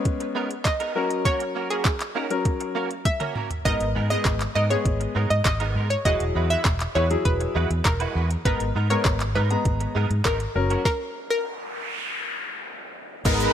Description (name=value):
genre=dance-pop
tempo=100 BPM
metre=4/4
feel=straight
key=unclear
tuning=A4 = 440 Hz
part: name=analog pluck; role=melody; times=0.0-12.5 s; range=G#4 to E5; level=-28 LUFS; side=equal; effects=chorus, dub echo
part: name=clear concert grand piano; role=accompaniment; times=0.0-13.5 s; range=F#3 to A#5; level=-28 LUFS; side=left 4 dB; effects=sidechain pumping
part: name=smooth R&B drum kit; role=drums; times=0.1-13.5 s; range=crash cymbal, handclaps, hi-hat, kick drum, shaker, snare drum, toms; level=-25 LUFS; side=equal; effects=none
part: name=direct-recorded clean electric guitar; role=riff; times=0.2-13.4 s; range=G#3 to B4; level=-31 LUFS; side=right 6 dB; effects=ensemble chorus
part: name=vintage muted fingered electric bass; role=bass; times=3.7-13.4 s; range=E1 to G#2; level=-25 LUFS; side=equal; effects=sidechain pumping
part: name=noise sweep and downlifter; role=sound effects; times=11.2-13.5 s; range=none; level=-30 LUFS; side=left 1 dB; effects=none
part: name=lush unison pad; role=sustained chords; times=13.3-13.5 s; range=G#3 to B4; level=-22 LUFS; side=right 2 dB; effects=chorus, sidechain pumping
room=light reverb, digital ambience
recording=none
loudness=-21 LUFS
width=side -10 dB against mid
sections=0.0-13.3 A section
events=drum fill 3.1-3.7; stop 10.9-13.3; noise sweep 11.2-13.3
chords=0.0 G#madd9; 1.0 F#; 3.7 G#madd9; 6.1 Eadd9; 8.5 G#madd9; 10.6 F#